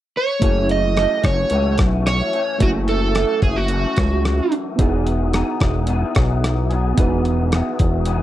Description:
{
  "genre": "indie pop, bedroom pop",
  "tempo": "110 BPM",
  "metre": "4/4",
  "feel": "straight",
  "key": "unclear",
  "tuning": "A4 = 441 Hz",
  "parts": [
    { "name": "overdriven slide guitar", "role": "melody", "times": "0.2-4.5 s", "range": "F#4 to D#5", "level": "-20 LUFS", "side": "right 3 dB", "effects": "lush chorus, slapback echo" },
    { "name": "electric guitar through a small old amp", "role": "accompaniment", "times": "0.4-8.2 s", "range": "F#2 to G#4", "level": "-26 LUFS", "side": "left 4 dB", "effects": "ensemble chorus, vibrato effect" },
    { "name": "reed electric piano", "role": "accompaniment", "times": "0.4-8.2 s", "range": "A3 to B4", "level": "-26 LUFS", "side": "right 4 dB", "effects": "cassette tape" },
    { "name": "chorused synth bass", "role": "bass", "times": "0.4-8.2 s", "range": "E1 to C#2", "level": "-20 LUFS", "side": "equal", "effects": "none" },
    { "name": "dusty soul sampler-style drum kit", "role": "drums", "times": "0.4-8.2 s", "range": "hi-hat, kick drum, rim click", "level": "-20 LUFS", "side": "equal", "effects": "none" }
  ],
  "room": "digital ambience",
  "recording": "dry, close 1970s-style studio recording",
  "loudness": "-16 LUFS",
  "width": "side -13 dB against mid",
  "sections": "0.4-8.2 A section",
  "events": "none",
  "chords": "0.4 F#m7; 4.8 Emaj7"
}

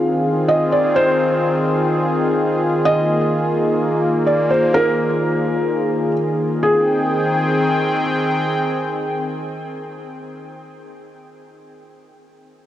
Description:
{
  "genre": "hip hop",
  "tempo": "free time",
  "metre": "none",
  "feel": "none",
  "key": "Ab major",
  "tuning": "A4 = 440 Hz",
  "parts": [
    { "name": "felt-muted upright piano", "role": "melody", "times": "0.0-8.0 s", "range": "Ab4 to F5", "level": "-20 LUFS", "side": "equal", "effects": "tape echo" },
    { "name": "sweeping resonant pad", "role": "sustained chords", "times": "0.0-10.3 s", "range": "Eb3 to G5", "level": "-18 LUFS", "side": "left 1 dB", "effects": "chorus" }
  ],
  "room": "wet huge ambient reverb, RT60 8.2 s",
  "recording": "worn, warbling old tape, cassette tape, warbly pitch drift",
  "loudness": "-15 LUFS",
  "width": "side -12 dB against mid",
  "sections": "0.0-6.6 A section; 6.6-10.4 B section",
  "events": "none",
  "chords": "0.0 Fm7; 2.8 Bb7sus4; 6.6 Abmaj7"
}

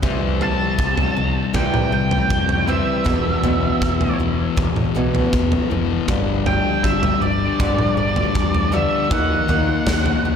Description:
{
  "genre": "quiet-loud alternative rock",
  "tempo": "79 BPM",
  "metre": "4/4",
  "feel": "straight",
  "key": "unclear",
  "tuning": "A4 = 441 Hz",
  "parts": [
    { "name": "picked acoustic archtop guitar", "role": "arpeggios", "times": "0.0-10.4 s", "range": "E2 to D#4", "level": "-25 LUFS", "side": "right 1 dB", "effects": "slapback echo" },
    { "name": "thick fuzz guitar", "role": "riff", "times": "0.0-10.4 s", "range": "E2 to D#4", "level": "-23 LUFS", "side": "left 10 dB", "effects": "distortion" },
    { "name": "overdriven picked electric bass", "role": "bass", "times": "0.0-10.4 s", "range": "E1 to F2", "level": "-24 LUFS", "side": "equal", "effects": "none" },
    { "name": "big rock drum kit", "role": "drums", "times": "0.0-10.2 s", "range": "kick drum, snare drum, toms", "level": "-22 LUFS", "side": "right 1 dB", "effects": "none" },
    { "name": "octave-fuzz lead guitar", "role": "melody", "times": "0.4-10.4 s", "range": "D5 to A5", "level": "-23 LUFS", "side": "right 3 dB", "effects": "distortion, slapback echo, tape echo" }
  ],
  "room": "moderate lush hall reverb, RT60 2.8 s",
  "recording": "big arena sound",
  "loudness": "-16 LUFS",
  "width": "side -7 dB against mid",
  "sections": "0.0-10.4 A section",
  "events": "none",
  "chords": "0.0 C; 3.1 E5; 6.1 G5; 9.1 D#m"
}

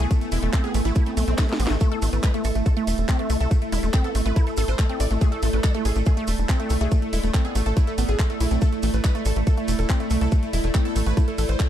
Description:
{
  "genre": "psychedelic trance",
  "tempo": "141 BPM",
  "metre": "4/4",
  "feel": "straight",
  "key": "unclear",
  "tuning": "A4 = 441 Hz",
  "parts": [
    { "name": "supersaw stab", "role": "melody", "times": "0.0-11.7 s", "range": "A3 to D5", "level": "-30 LUFS", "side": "right 1 dB", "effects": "phaser, sidechain pumping, ping-pong delay" },
    { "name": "evolving wavetable pad", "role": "sustained chords", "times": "0.0-11.7 s", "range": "A3 to A4", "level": "-32 LUFS", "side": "right 2 dB", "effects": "phaser, built-in reverb, sidechain pumping" },
    { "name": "woody wave-folded pluck", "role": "riff", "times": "0.0-11.6 s", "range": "G#3 to B4", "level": "-31 LUFS", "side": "moving between left 5 dB and right 5 dB", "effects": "chorus, auto-pan, sidechain pumping, ping-pong delay" },
    { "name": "tight sequencer bass", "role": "bass", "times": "0.0-11.6 s", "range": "E1 to C2", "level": "-22 LUFS", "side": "equal", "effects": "tube saturation" },
    { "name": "garage drum kit", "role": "drums", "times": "0.0-11.7 s", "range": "handclaps, hi-hat, ride cymbal, snare drum", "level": "-32 LUFS", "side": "equal", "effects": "studio reverb" },
    { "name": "maracas", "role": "percussion", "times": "0.0-11.7 s", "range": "none", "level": "-40 LUFS", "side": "right 6 dB", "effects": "none" },
    { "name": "warbly tape-like pad", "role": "texture", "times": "0.0-11.7 s", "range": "E4 to G#5", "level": "-34 LUFS", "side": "equal", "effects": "chorus, built-in reverb, sidechain pumping" },
    { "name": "electronic kick drum", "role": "drums", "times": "0.1-11.7 s", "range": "none", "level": "-20 LUFS", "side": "equal", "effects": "studio reverb" }
  ],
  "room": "little or no reverb",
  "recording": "dark, warm production",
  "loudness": "-20 LUFS",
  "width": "side -11 dB against mid",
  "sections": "0.0-11.7 A section",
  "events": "drum fill 1.4-1.8",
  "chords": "0.0 A5"
}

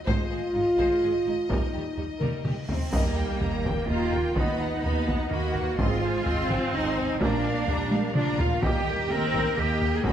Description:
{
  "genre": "cinematic, epic orchestral film score",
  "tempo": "126 BPM",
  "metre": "3/4",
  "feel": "straight",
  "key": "Eb major",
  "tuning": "A4 = 443 Hz",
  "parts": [
    { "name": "warm symphonic violin section", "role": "melody", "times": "0.0-10.1 s", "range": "Eb5 to C6", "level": "-39 LUFS", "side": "left 5 dB", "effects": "none" },
    { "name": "dark symphonic violin section", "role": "second line", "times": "0.1-10.1 s", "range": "Eb4 to G5", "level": "-35 LUFS", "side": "left 2 dB", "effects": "none" },
    { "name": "rich symphonic viola section", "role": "accompaniment", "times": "0.1-10.1 s", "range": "F3 to C4", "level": "-33 LUFS", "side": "right 1 dB", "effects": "none" },
    { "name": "mellow French horn section", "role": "sustained chords", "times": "0.1-10.1 s", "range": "Bb3 to Bb4", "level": "-30 LUFS", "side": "left 1 dB", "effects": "none" },
    { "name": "rich symphonic cello section", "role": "bass", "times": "0.1-10.1 s", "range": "Eb2 to Bb4", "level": "-31 LUFS", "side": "right 3 dB", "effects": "none" },
    { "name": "warm symphonic double bass section", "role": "bass", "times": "0.1-10.1 s", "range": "Ab1 to Eb2", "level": "-32 LUFS", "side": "right 3 dB", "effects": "none" },
    { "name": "taiko ensemble", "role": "drums", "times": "0.1-10.1 s", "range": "none", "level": "-28 LUFS", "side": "equal", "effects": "none" },
    { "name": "cymbal swell and sub drop", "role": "sound effects", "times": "2.5-4.4 s", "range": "none", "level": "-37 LUFS", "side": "equal", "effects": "none" },
    { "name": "warm trombone section", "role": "sustained chords", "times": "2.9-10.1 s", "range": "Eb3 to Eb4", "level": "-38 LUFS", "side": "right 3 dB", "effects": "none" }
  ],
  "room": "moderate concert hall reverb, RT60 1.9 s",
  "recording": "none",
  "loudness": "-23 LUFS",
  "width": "side -10 dB against mid",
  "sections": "0.0-2.9 A section; 2.9-10.1 A section",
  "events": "drum fill 2.2-2.9, 7.9-8.6; cymbal swell 2.5-2.9; impact 2.9-4.4",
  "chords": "0.1 Ab; 1.5 Eb; 4.4 B/D#; 5.8 Ab; 7.2 Bb; 8.6 Eb"
}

